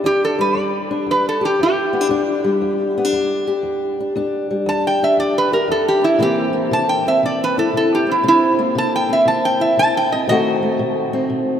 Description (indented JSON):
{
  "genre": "acoustic country blues, solo or duo",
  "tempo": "117 BPM",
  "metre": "4/4",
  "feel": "swing 67% on 8ths",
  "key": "E minor",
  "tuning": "A4 = 441 Hz",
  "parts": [
    { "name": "fingerpicked old ladder-braced acoustic guitar", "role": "accompaniment", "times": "0.0-11.6 s", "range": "E2 to G4", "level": "-19 LUFS", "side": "left 2 dB", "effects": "none" },
    { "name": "metal-body resonator slide guitar", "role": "melody", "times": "0.1-10.8 s", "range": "E4 to A5", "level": "-17 LUFS", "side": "right 1 dB", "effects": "none" }
  ],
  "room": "wet cathedral reverb, RT60 5.6 s",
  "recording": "in a vast, echoing space",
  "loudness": "-15 LUFS",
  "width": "side -9 dB against mid",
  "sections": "0.0-11.6 A section",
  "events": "resonator guitar played with a steel bar solo 0.0-11.6",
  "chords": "0.0 Em7; 6.2 C7; 10.3 B7b9",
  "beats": "| 0.04 0.55 1.07 1.58 | 2.10 2.61 3.12 3.64 | 4.15 4.66 5.17 5.69 | 6.20 6.71 7.22 7.73 | 8.24 8.75 9.26 9.77 | 10.28 10.79 11.30"
}